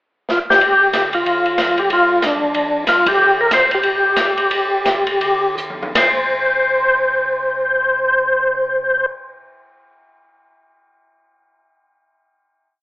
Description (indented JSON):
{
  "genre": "soul jazz organ trio",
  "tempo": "157-186 BPM",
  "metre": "4/4",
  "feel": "swing 61% on 8ths",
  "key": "C minor",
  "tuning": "A4 = 440 Hz",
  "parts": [
    { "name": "percussive tonewheel organ", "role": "melody", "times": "0.3-9.1 s", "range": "D4 to C5", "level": "-14 LUFS", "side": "left 1 dB", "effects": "overdrive, chorus vibrato, slow rotary speaker" },
    { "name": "open jazz drum kit", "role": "drums", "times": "0.3-6.1 s", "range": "hi-hat, kick drum, ride cymbal, snare drum, toms", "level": "-20 LUFS", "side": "equal", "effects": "none" },
    { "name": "mellow tonewheel organ", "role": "bass", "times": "0.6-9.0 s", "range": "G1 to Ab2", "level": "-43 LUFS", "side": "equal", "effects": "slow rotary speaker" }
  ],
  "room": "moderate recital hall reverb, RT60 1.4 s",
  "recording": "recorded in a church or concert hall, telephone sound",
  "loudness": "-13 LUFS",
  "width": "side -18 dB against mid",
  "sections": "0.0-0.6 pickup bar; 0.6-6.0 A section; 6.0-9.0 final note",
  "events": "drum fill 0.3-0.6, 5.6-6.0; band accent 3.0; slowing down 3.2-6.0",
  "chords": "0.0 N.C.; 0.6 Cmadd9; 1.9 G5; 3.2 Cm9; 6.0 N.C.",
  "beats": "0.28 | 0.60 0.93 1.25 1.57 | 1.90 2.22 2.54 2.87 | 3.19 3.52 3.85 4.18 | 4.52 4.86 5.22 5.58 | 5.96 6.34 6.72 7.10 | 7.49 7.87 8.25 8.63"
}